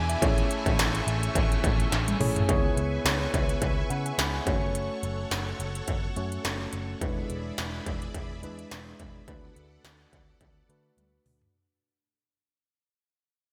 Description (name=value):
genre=1980s-style pop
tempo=106 BPM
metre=4/4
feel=swing 55% on 16ths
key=unclear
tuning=A4 = 441 Hz
part: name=mellow tine electric piano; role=accompaniment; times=0.0-11.6 s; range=G#3 to B5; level=-36 LUFS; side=equal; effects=none
part: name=overdriven electric guitar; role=accompaniment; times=0.0-2.5 s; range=E2 to A3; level=-39 LUFS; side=equal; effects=ensemble chorus
part: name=string machine, violas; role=sustained chords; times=0.0-11.5 s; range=A3 to D6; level=-40 LUFS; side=equal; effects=ensemble chorus
part: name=vintage muted picked electric bass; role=bass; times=0.0-11.5 s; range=E1 to D3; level=-34 LUFS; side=equal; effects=none
part: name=industrial drum kit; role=drums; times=0.1-11.5 s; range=hi-hat, kick drum, snare drum, tambourine, toms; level=-31 LUFS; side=equal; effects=distortion, gated reverb
room=moderate lush hall reverb, RT60 2.5 s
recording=bright 1980s-style digital production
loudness=-28 LUFS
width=mono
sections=0.0-2.5 A section; 2.5-11.5 B section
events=drum fill 1.9-2.5, 11.0-11.5; fade-out 2.5-11.5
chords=0.2 Amaj7; 2.5 C#m7; 4.5 F#m; 7.0 E7; 9.3 D6